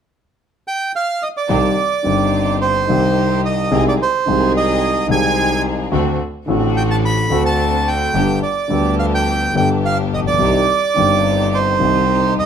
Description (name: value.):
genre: tango.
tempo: 108 BPM.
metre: 4/4.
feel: rubato.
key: C harmonic minor.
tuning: A4 = 436 Hz.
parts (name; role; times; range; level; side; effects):
bandoneon; melody; 0.7-12.5 s; C5 to B5; -18 LUFS; right 4 dB; none.
dark concert grand piano; accompaniment; 1.5-12.5 s; G1 to Ab4; -18 LUFS; left 3 dB; none.
warm studio string section; stabs; 1.5-12.5 s; B3 to Ab4; -26 LUFS; left 1 dB; none.
clear double bass; bass; 1.5-12.5 s; G1 to Eb2; -22 LUFS; right 2 dB; none.
room: moderate studio reverb, RT60 0.8 s.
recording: minimal, uncompressed stereo recording.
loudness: -14 LUFS.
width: side -8 dB against mid.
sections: 0.0-1.5 A section; 1.5-12.5 B section.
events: none.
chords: 0.0 N.C.; 1.5 Cm; 3.7 Ab/C; 5.9 D7; 8.1 G; 10.4 Cm.